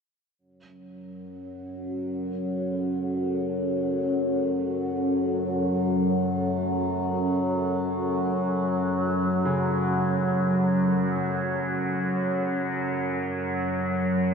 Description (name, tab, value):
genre	dark ambient drone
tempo	free time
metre	none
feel	none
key	F# minor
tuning	A4 = 438 Hz
part	deep dark ambient pad	sustained chords	1.4-14.3 s	C#4 to F#5	-29 LUFS	equal	chorus, built-in reverb, shimmer reverb
part	overtone-sweeping drone	drone	1.1-14.3 s	F#2 to F#3	-26 LUFS	equal	chorus, built-in reverb, phaser
part	bright grand piano	arpeggios	9.5-14.3 s	C#3	-32 LUFS	right 2 dB	ping-pong delay, shimmer reverb
room	wet huge ambient reverb, RT60 8.8 s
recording	dark, warm production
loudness	-24 LUFS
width	side -6 dB against mid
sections	0.4-14.3 A section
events	fade-out on ambient pad 0.4-14.3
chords	0.4 F#m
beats	free time